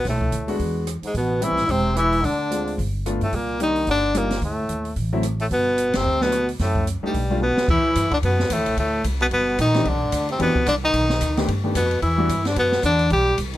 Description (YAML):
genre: jazz, small-group swing and bop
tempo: 220 BPM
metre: 4/4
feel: swing 58% on 8ths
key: G major, E minor from 7.7 s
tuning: A4 = 440 Hz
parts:
  - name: clear tenor saxophone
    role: melody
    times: 0.0-13.4 s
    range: G3 to G4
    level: -21 LUFS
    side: left 1 dB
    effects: none
  - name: bright trombone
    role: second line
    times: 0.0-13.6 s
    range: G2 to G3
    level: -28 LUFS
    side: right 3 dB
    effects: none
  - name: upright bass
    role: bass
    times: 0.0-13.6 s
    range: E1 to G2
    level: -24 LUFS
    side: equal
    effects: none
  - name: open jazz drum kit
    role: drums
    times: 0.0-13.6 s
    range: crash cymbal, hi-hat, kick drum, ride cymbal, rim click, snare drum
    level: -29 LUFS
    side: equal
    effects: none
  - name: clear grand piano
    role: accompaniment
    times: 0.5-7.4, 9.7-12.3 s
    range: D#3 to G4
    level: -26 LUFS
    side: left 1 dB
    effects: none
room: little or no reverb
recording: close, detailed microphones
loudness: -19 LUFS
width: side -14 dB against mid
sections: 0.0-7.7 A section; 7.7-13.6 B section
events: band accent 5.9; drum fill 7.4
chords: 0.0 Bm7; 0.6 E7; 1.1 Am7; 2.2 Dm7b5; 2.8 G7; 3.3 Cm9; 4.4 D5; 5.5 Gmaj7; 6.6 Dadd11/F#; 7.1 G9/B; 7.7 Em11; 8.8 D5; 9.3 G; 9.9 Cmaj9; 10.9 B7alt; 12.0 Em9